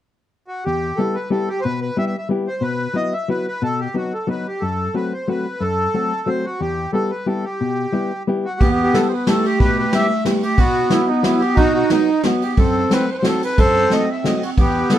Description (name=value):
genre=musette waltz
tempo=181 BPM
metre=3/4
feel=swing 53% on 8ths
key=E harmonic minor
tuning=A4 = 440 Hz
part: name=accordion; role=melody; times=0.5-15.0 s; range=B3 to E5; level=-21 LUFS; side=equal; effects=plate reverb
part: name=hollow-body jazz guitar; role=accompaniment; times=0.7-15.0 s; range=E2 to G4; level=-22 LUFS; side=left 3 dB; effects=none
part: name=breathy clarinet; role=second line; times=8.6-15.0 s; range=A3 to D#4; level=-21 LUFS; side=right 3 dB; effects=none
part: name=soft brush drum kit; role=drums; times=8.6-15.0 s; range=kick drum, ride cymbal, snare drum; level=-20 LUFS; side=right 1 dB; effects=none
room=moderate small room reverb, RT60 0.6 s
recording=dark, warm production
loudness=-16 LUFS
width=side -12 dB against mid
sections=0.6-8.6 A section; 8.6-15.0 A section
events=none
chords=0.0 N.C.; 0.6 Em; 2.6 Bsus4; 3.6 B; 4.6 F#dim; 6.6 Em; 10.6 Bsus4; 11.6 B; 12.6 F#dim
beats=0.31 | 0.64 0.98 1.31 | 1.64 1.97 2.30 | 2.62 2.95 3.28 | 3.61 3.94 4.28 | 4.61 4.94 5.28 | 5.61 5.94 6.27 | 6.60 6.93 7.26 | 7.59 7.93 8.27 | 8.60 8.94 9.27 | 9.60 9.93 10.25 | 10.58 10.91 11.24 | 11.57 11.90 12.24 | 12.57 12.91 13.24 | 13.57 13.91 14.24 | 14.57 14.89